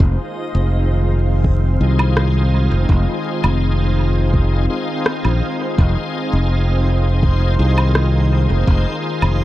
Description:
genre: ambient dub.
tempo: 83 BPM.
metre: 4/4.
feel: straight.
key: F minor.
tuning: A4 = 440 Hz.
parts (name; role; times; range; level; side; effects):
soft additive organ-like pad; sustained chords; 0.0-9.4 s; Eb3 to C5; -24 LUFS; equal; ensemble chorus, built-in reverb.
modern bright fingered electric bass; bass; 0.0-9.4 s; F1 to C2; -15 LUFS; equal; none.
electronic kick drum; drums; 0.0-8.8 s; none; -16 LUFS; equal; small room ambience.
backwards swelling texture; texture; 0.0-9.4 s; C4 to C5; -30 LUFS; equal; built-in reverb.
bright tonewheel organ; stabs; 1.8-9.4 s; Eb4 to Ab4; -26 LUFS; left 2 dB; overdrive, chorus vibrato, slow rotary speaker, low-pass filter, dub echo.
electronic woodblock and rim click; drums; 2.0-9.4 s; none; -24 LUFS; right 1 dB; small room ambience, dub echo.
room: little or no reverb.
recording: vinyl crackle.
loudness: -14 LUFS.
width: side -15 dB against mid.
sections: 0.0-9.4 A section.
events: none.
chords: 0.0 Fm7.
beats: | 0.00 0.72 1.45 2.17 | 2.89 3.61 4.34 5.06 | 5.78 6.51 7.23 7.95 | 8.67 9.40.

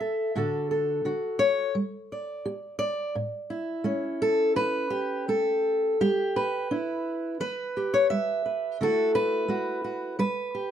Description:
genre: folk, solo fingerstyle acoustic guitar.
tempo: 85 BPM.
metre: 4/4.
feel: straight.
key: A mixolydian.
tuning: A4 = 439 Hz.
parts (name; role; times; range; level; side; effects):
fingerpicked steel-string acoustic guitar; solo; 0.0-10.7 s; A2 to E5; -25 LUFS; equal; none.
room: light reverb.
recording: dark, warm production.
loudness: -25 LUFS.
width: side -9 dB against mid.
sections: 0.0-6.0 A section; 6.0-10.7 B section.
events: none.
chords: 0.3 D/A; 1.7 G5; 3.1 Aadd9; 6.0 G6; 7.4 Em; 8.8 Dadd9; 10.2 N.C..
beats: | 0.34 1.03 1.74 2.44 | 3.14 3.85 4.55 5.28 | 5.99 6.70 7.40 8.11 | 8.80 9.50 10.20.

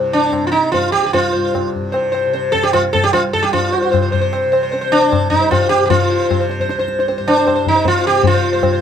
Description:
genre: indian classical, Hindustani.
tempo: 152 BPM.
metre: 3/4.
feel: straight.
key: C raga bhimpalasi.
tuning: A4 = 440 Hz.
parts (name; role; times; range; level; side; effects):
tanpura; drone; 0.0-8.8 s; C2 to C3; -26 LUFS; right 2 dB; none.
sitar; melody; 0.1-8.8 s; D4 to C5; -14 LUFS; equal; none.
tabla; percussion; 0.3-8.8 s; none; -19 LUFS; left 2 dB; none.
room: moderate studio reverb, RT60 0.7 s.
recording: none.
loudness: -13 LUFS.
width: side -8 dB against mid.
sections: 0.0-3.5 A section; 3.5-8.8 B section.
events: speeding up 0.0-8.8.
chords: none.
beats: 0.34 0.74 | 1.14 1.54 1.94 | 2.34 2.74 3.14 | 3.54 3.93 4.33 | 4.72 5.12 5.51 | 5.91 6.30 6.69 | 7.08 7.47 7.86 | 8.24 8.63.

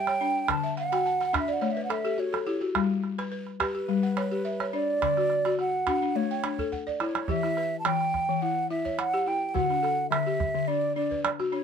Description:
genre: west african traditional, West African string and xylophone music.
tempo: 106 BPM.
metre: 4/4.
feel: straight.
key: unclear.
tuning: A4 = 440 Hz.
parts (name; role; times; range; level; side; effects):
mellow hollow silver concert flute; melody; 0.0-11.6 s; B4 to A5; -28 LUFS; right 3 dB; none.
balafon; arpeggios; 0.0-11.6 s; D3 to A5; -28 LUFS; left 4 dB; none.
calabash; percussion; 0.1-11.6 s; none; -31 LUFS; right 6 dB; none.
room: moderate small room reverb, RT60 0.5 s.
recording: minimal, uncompressed stereo recording.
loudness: -25 LUFS.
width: side -7 dB against mid.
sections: 0.0-7.3 A section; 7.3-11.6 B section.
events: balafon fill 0.6-2.8; drum fill 6.7-7.3.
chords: 0.5 D; 1.6 A5; 2.8 G; 5.0 D; 6.2 A; 7.3 Em; 9.5 D.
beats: | 0.49 1.06 1.62 2.19 | 2.76 3.32 3.89 4.45 | 5.02 5.59 6.15 6.72 | 7.29 7.85 8.42 8.98 | 9.55 10.12 10.68 11.25.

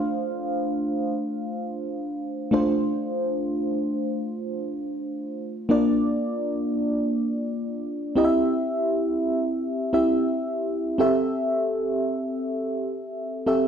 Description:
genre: pop.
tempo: free time.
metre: none.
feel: none.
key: unclear.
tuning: A4 = 440 Hz.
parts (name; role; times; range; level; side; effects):
mellow FM electric piano; solo; 0.0-13.7 s; A3 to F5; -23 LUFS; equal; chorus.
room: wet small room reverb, RT60 0.5 s.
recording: none.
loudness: -23 LUFS.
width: side -8 dB against mid.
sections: 0.0-5.7 A section; 5.7-13.7 B section.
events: none.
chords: 0.0 F6; 5.7 Bb; 8.2 C; 11.0 Am7.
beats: free time.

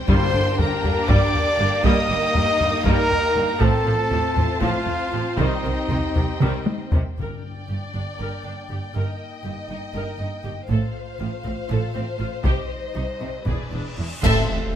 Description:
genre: cinematic, epic orchestral film score.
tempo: 238 BPM (eighths).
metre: 7/8.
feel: straight.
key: G minor.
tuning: A4 = 440 Hz.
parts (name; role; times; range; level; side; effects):
warm symphonic violin section; melody; 0.0-14.6 s; D5 to Eb6; -34 LUFS; left 2 dB; none.
warm symphonic violin section; second line; 0.0-14.6 s; Bb3 to A5; -30 LUFS; left 2 dB; none.
warm symphonic string section; sustained chords; 0.0-7.2, 14.2-14.8 s; A3 to C6; -30 LUFS; left 1 dB; none.
clear symphonic viola section; accompaniment; 0.1-14.8 s; C3 to Bb4; -30 LUFS; equal; none.
mellow French horn section; sustained chords; 0.1-14.8 s; G3 to Eb5; -31 LUFS; left 5 dB; none.
warm trombone section; sustained chords; 0.1-5.6, 14.2-14.8 s; A2 to C4; -33 LUFS; right 5 dB; none.
mellow trumpet; stabs; 0.1-6.9, 14.2-14.8 s; Eb4 to E5; -24 LUFS; right 2 dB; none.
rich symphonic cello section; bass; 0.1-14.6 s; E2 to C3; -28 LUFS; right 2 dB; none.
warm symphonic double bass section; bass; 0.1-14.6 s; E1 to C2; -28 LUFS; right 2 dB; none.
taiko ensemble; drums; 0.1-14.7 s; none; -24 LUFS; equal; none.
timpani; percussion; 0.1-0.8, 7.2-7.9, 14.2-14.8 s; G2 to A2; -29 LUFS; left 2 dB; none.
cymbal swell, clash cymbals and concert bass drum; percussion; 10.7-14.8 s; none; -30 LUFS; left 1 dB; none.
reverse cymbal and impact; sound effects; 13.8-14.8 s; none; -34 LUFS; equal; none.
room: light reverb.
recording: close, detailed microphones.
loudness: -20 LUFS.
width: side -10 dB against mid.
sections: 0.0-7.2 A section; 7.2-14.2 B section.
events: drum fill 6.4-7.2; reverse cymbal 13.8-14.2; band accent 14.2-14.7; impact 14.2-14.8.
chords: 0.1 Gm; 1.8 Eb/G; 3.6 F/A; 5.4 Cm; 7.2 Gm; 8.9 Eb/G; 10.7 F/A; 12.4 Cm; 13.5 E7; 14.2 Am.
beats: | 0.09 0.34 0.59 0.84 1.09 1.34 1.59 | 1.85 2.10 2.35 2.60 2.85 3.11 3.36 | 3.61 3.86 4.11 4.36 4.62 4.87 5.13 | 5.38 5.64 5.90 6.16 6.42 6.68 6.93 | 7.19 7.44 7.70 7.95 8.20 8.45 8.70 | 8.94 9.19 9.44 9.69 9.94 10.19 10.44 | 10.69 10.94 11.20 11.45 11.70 11.95 12.20 | 12.45 12.70 12.96 13.21 13.47 13.73 13.98 | 14.24 14.49 14.74.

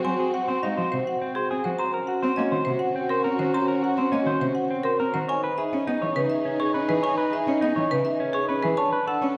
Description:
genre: classical, minimalist pattern music.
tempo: 103 BPM.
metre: 3/4.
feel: straight.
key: Eb dorian.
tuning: A4 = 439 Hz.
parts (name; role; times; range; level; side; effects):
marimba with hard mallets; melody; 0.0-9.3 s; Ab4 to Bb5; -30 LUFS; equal; none.
mellow French horn; second line; 0.0-9.3 s; D4 to Gb4; -33 LUFS; equal; none.
rich cello; accompaniment; 0.0-9.3 s; C3 to Db4; -33 LUFS; equal; none.
warm symphonic violin section; sustained chords; 0.0-9.4 s; C4 to A4; -34 LUFS; equal; none.
clean electric guitar; arpeggios; 0.0-9.3 s; C4 to Db5; -30 LUFS; equal; none.
room: wet scoring stage reverb, RT60 1.6 s.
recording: recorded in a church or concert hall.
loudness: -25 LUFS.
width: mono.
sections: 0.0-9.4 A section.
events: none.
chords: 0.0 Ab7; 1.8 Ebm7; 5.3 Emaj7; 8.8 Bm7.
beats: | 0.04 0.62 1.21 | 1.79 2.37 2.95 | 3.54 4.12 4.70 | 5.28 5.87 6.45 | 7.03 7.61 8.20 | 8.78 9.36.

